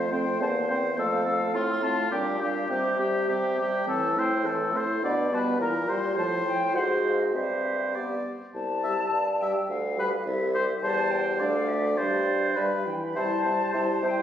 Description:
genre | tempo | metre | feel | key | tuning
quick classical-period movement for wind quintet | 104 BPM | 2/4 | rubato | C major from 3.9 s | A4 = 439 Hz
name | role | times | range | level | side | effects
concert flute | melody | 0.0-14.2 s | D5 to C6 | -32 LUFS | left 3 dB | none
warm oboe | second line | 0.0-14.2 s | F4 to E5 | -28 LUFS | left 1 dB | none
mellow clarinet | accompaniment | 0.0-14.2 s | B3 to G4 | -34 LUFS | right 2 dB | none
warm French horn | accompaniment | 0.0-14.2 s | E3 to C4 | -33 LUFS | left 1 dB | none
warm bassoon | bass | 0.0-14.2 s | C2 to C3 | -29 LUFS | right 1 dB | none
room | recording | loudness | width
moderate scoring stage reverb, RT60 1.8 s | recorded on a phone in the room, studio reverb, compression | -24 LUFS | side -10 dB against mid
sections
0.0-8.5 A section; 8.5-14.2 B section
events
none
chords
0.4 C7/E; 1.0 F; 1.5 F/A; 2.1 Gm/Bb; 2.7 C; 3.9 Am; 5.0 G/B; 5.6 C7/Bb; 6.2 F/A; 6.8 Ab7; 7.3 C/G; 7.9 G; 8.5 C5; 9.7 G7(no3)/D; 10.3 C; 10.8 C/E; 11.4 Dm; 12.0 Gsus4; 12.6 G; 13.2 C

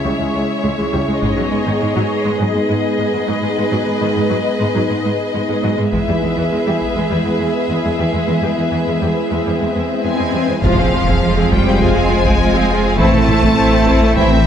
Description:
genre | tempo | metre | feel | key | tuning
cinematic, hybrid orchestral and electronic film score | 102 BPM | 4/4 | straight | unclear | A4 = 442 Hz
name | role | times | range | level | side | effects
warm symphonic violin section | second line | 0.0-14.5 s | C4 to F5 | -22 LUFS | left 4 dB | none
rich symphonic viola section | accompaniment | 0.0-14.5 s | Eb3 to Ab4 | -21 LUFS | right 1 dB | low-pass filter
warm analog pad | sustained chords | 0.0-14.5 s | E3 to E5 | -20 LUFS | equal | chorus, low-pass filter
rich symphonic cello section | bass | 0.1-14.5 s | Db2 to A3 | -20 LUFS | right 2 dB | none
taiko ensemble | drums | 1.2-2.4, 5.9-7.1, 10.6-14.5 s | none | -21 LUFS | equal | none
swell and impact | sound effects | 9.2-13.0 s | none | -23 LUFS | left 2 dB | none
warm symphonic violin section | melody | 10.0-14.5 s | E5 to A5 | -22 LUFS | left 2 dB | low-pass filter
clear trombone section | sustained chords | 10.6-14.4 s | C3 to A3 | -23 LUFS | right 2 dB | low-pass filter
mellow French horn section | sustained chords | 10.6-14.4 s | C4 to F4 | -25 LUFS | left 6 dB | low-pass filter
pure sine sub bass | bass | 10.6-14.5 s | F1 to A1 | -20 LUFS | equal | none
rich symphonic double bass section | bass | 10.6-14.5 s | A1 to F2 | -21 LUFS | right 3 dB | none
room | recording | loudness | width
moderate recital hall reverb, RT60 1.5 s | none | -14 LUFS | side -8 dB against mid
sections
0.0-10.6 A section; 10.6-14.5 B section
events
build-up 0.0-10.6; filter sweep 0.0-10.6; swell 9.2-10.6; impact 10.6-13.0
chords
0.0 Dbm; 1.2 Abm; 5.9 E; 10.6 Fm; 13.0 Am

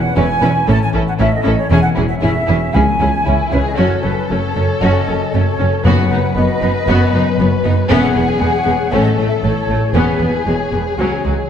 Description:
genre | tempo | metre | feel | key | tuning
cinematic, heroic adventure film score | 116 BPM | 4/4 | straight | unclear | A4 = 440 Hz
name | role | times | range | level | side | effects
flute section | second line | 0.0-11.5 s | B4 to A5 | -21 LUFS | equal | none
concert harp | arpeggios | 0.0-11.5 s | E2 to C#5 | -22 LUFS | left 7 dB | none
dark symphonic violin section | melody | 0.2-11.5 s | E4 to B4 | -22 LUFS | left 4 dB | none
rich studio violin section | second line | 0.2-11.3 s | G#3 to F#4 | -24 LUFS | left 1 dB | none
clear symphonic viola section | accompaniment | 0.2-11.3 s | F#3 to C#4 | -21 LUFS | equal | none
clear symphonic cello section | bass | 0.2-11.3 s | C#2 to A2 | -20 LUFS | right 2 dB | none
rich symphonic double bass section | bass | 0.2-11.3 s | E1 to C#2 | -19 LUFS | right 2 dB | none
timpani | percussion | 2.7-6.6 s | F#2 to C#3 | -20 LUFS | left 2 dB | none
room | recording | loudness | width
moderate scoring stage reverb, RT60 1.9 s | dark, warm production | -12 LUFS | side -8 dB against mid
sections
0.0-11.5 A section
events
none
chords
0.0 E6; 0.7 A; 1.7 E6; 2.7 C#m; 3.8 F#m; 5.9 B/F#; 7.9 E6; 8.9 A; 9.9 E6; 11.0 C#sus4

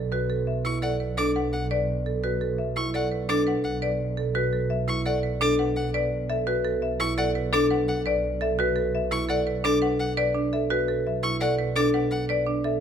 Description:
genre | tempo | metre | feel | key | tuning
classical, minimalist pattern music | 170 BPM | 6/4 | straight | B minor | A4 = 440 Hz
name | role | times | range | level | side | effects
marimba with hard mallets | arpeggios | 0.0-12.8 s | D4 to B4 | -27 LUFS | right 6 dB | none
rich studio double bass section | bass | 0.0-12.8 s | B1 | -30 LUFS | right 2 dB | none
marimba with hard mallets | melody | 0.1-12.8 s | A4 to F#5 | -27 LUFS | left 7 dB | none
clear violin | arpeggios | 0.7-12.2 s | F#5 to D6 | -32 LUFS | left 2 dB | none
room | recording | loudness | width
wet recital hall reverb, RT60 1.4 s | none | -23 LUFS | side -8 dB against mid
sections
0.0-12.8 A section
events
none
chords
0.0 Bm7

